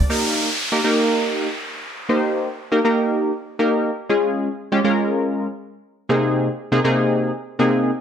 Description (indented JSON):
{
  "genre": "pop",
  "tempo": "120 BPM",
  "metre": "4/4",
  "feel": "straight",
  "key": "Eb major",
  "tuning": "A4 = 436 Hz",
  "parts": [
    { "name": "funky polysynth comp", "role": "accompaniment", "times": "0.1-7.9 s", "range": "C3 to C5", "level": "-18 LUFS", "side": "equal", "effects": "chorus" },
    { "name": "downlifter", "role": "sound effects", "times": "0.1-4.1 s", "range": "none", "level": "-25 LUFS", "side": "equal", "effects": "none" }
  ],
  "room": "moderate plate reverb, RT60 1.2 s, digital ambience",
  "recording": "bright 1980s-style digital production",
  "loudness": "-18 LUFS",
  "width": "side -8 dB against mid",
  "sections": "0.1-8.0 A section",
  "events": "none",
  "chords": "0.1 Eb; 4.1 Db; 6.1 Abadd9/C"
}